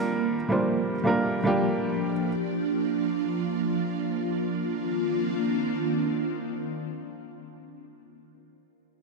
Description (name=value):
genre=amapiano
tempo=free time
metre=none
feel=none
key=C minor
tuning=A4 = 440 Hz
part: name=warm baby grand piano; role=accompaniment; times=0.0-2.3 s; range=G3 to C5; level=-25 LUFS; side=right 2 dB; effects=none
part: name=ethereal airy pad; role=sustained chords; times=0.0-7.4 s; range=Eb3 to G4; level=-27 LUFS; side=right 1 dB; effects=ensemble chorus, built-in reverb, phaser
room=light reverb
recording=dry, gritty hardware recording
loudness=-24 LUFS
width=side -2 dB against mid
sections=0.0-4.5 A section; 4.5-6.7 B section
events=drop 0.0-4.5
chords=0.0 Gm7; 4.5 Cm11